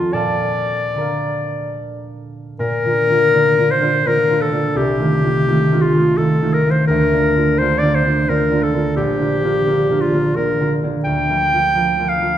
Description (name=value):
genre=classical, romantic duo for clarinet and harp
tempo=71-88 BPM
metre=3/4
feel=rubato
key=Bb major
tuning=A4 = 440 Hz
part: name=bright clarinet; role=melody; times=0.0-12.4 s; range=F4 to G5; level=-17 LUFS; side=left 2 dB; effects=none
part: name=concert harp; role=accompaniment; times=0.0-12.4 s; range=Bb1 to C6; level=-18 LUFS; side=right 2 dB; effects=none
room=wet recital hall reverb, RT60 1.5 s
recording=minimal, uncompressed stereo recording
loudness=-14 LUFS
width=side -10 dB against mid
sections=0.0-2.6 A section; 2.6-12.4 B section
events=none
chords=0.1 Bb; 4.7 F7/C; 6.9 Bb/D; 9.0 Bb; 11.1 Bb/D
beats=| 0.13 0.96 1.77 | 2.59 3.33 4.05 | 4.75 5.46 6.17 | 6.89 7.59 8.29 | 8.97 9.66 10.37 | 11.06 11.75